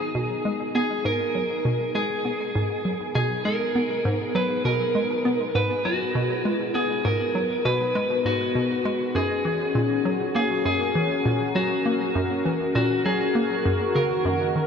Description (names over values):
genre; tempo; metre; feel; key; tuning
ambient, sequencer-driven space music; 100 BPM; 4/4; straight; G# minor; A4 = 442 Hz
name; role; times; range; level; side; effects
lightly driven lead guitar; melody; 0.0-14.7 s; F#4 to B4; -25 LUFS; left 1 dB; tape echo
phased analog pad; sustained chords; 0.0-14.7 s; D#3 to A#5; -28 LUFS; left 2 dB; phaser, chorus
hollow square pluck; riff; 0.0-14.7 s; F#2 to B3; -26 LUFS; right 1 dB; chorus, tape echo
room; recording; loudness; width
wet huge ambient reverb, RT60 7.2 s; in a vast, echoing space; -22 LUFS; side -6 dB against mid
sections
0.0-14.7 A section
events
fade-in on analog synth pad 0.0-14.7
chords
0.0 G#m; 9.2 F#; 14.0 D#m